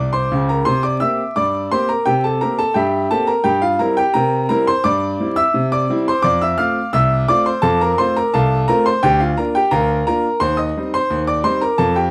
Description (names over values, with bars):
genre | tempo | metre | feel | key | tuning
ragtime piano | 86 BPM | 2/4 | straight | F major | A4 = 440 Hz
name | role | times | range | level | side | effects
clear grand piano | solo | 0.0-12.1 s | C2 to F6 | -17 LUFS | equal | none
room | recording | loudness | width
light reverb | close, detailed microphones, vinyl crackle | -17 LUFS | mono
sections
0.0-12.1 A section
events
none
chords
0.0 N.C.; 0.7 C7; 3.5 C7/G; 6.2 F; 9.0 Bb/D; 10.4 Cm/Eb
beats
| 0.67 1.36 | 2.06 2.76 | 3.45 4.15 | 4.85 5.54 | 6.24 6.94 | 7.63 8.33 | 9.02 9.71 | 10.40 11.10 | 11.79